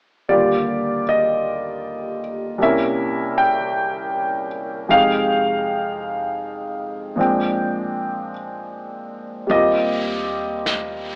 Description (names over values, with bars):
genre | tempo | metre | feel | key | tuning
jazz ballad | 52 BPM | 4/4 | swing 68% on 8ths | Eb major | A4 = 440 Hz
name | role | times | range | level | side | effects
warm concert grand piano | accompaniment | 0.3-11.2 s | C2 to G5 | -21 LUFS | equal | none
upright bass | bass | 9.5-11.2 s | Eb2 | -37 LUFS | equal | none
jazz brush drum kit | drums | 9.5-11.2 s | brushed snare drum, hi-hat, snare drum | -29 LUFS | equal | none
room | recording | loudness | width
moderate studio reverb, RT60 0.7 s | AM radio sound | -21 LUFS | mono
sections
0.3-9.5 A section; 9.5-11.2 B section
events
none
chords
0.3 Ebmaj7; 2.6 C7b9; 4.9 Fm7; 7.2 Bb13; 9.5 Eb6